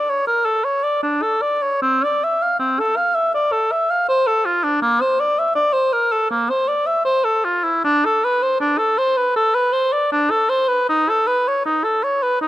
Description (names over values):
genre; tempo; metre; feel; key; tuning
classical, baroque-style fantasia for unaccompanied oboe; 80 BPM; 4/4; rubato; unclear; A4 = 441 Hz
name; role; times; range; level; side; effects
warm oboe; solo; 0.0-12.5 s; Bb3 to F5; -16 LUFS; equal; none
room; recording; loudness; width
light reverb; close, detailed microphones, vinyl crackle; -16 LUFS; side -14 dB against mid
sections
0.0-12.5 A section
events
none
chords
none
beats
0.27 1.03 | 1.82 2.60 3.34 4.08 | 4.83 5.57 6.31 7.06 | 7.85 8.62 9.37 10.12 | 10.89 11.65 12.41